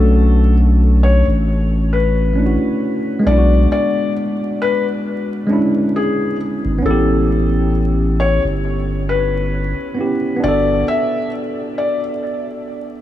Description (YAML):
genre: lo-fi hip hop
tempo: 67 BPM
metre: 4/4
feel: swing 56% on 16ths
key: B minor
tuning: A4 = 439 Hz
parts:
  - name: felt-muted upright piano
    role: melody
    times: 0.0-12.0 s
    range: G#4 to E5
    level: -21 LUFS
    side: left 4 dB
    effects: analog delay
  - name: tine electric piano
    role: accompaniment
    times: 0.0-13.0 s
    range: G#3 to A4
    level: -19 LUFS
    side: right 1 dB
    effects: none
  - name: saturated sub bass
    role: bass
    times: 0.0-10.8 s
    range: G1 to B1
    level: -15 LUFS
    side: equal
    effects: none
room: light reverb, studio reverb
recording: vinyl crackle, small room ambience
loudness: -14 LUFS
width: side -12 dB against mid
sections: 0.0-13.0 A section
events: none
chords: 0.0 Bm9; 3.2 E13/B; 6.8 A7; 10.4 Gmaj9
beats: 0.56 1.46 2.35 | 3.25 4.15 5.04 5.94 | 6.83 7.73 8.62 9.52 | 10.41 11.31 12.21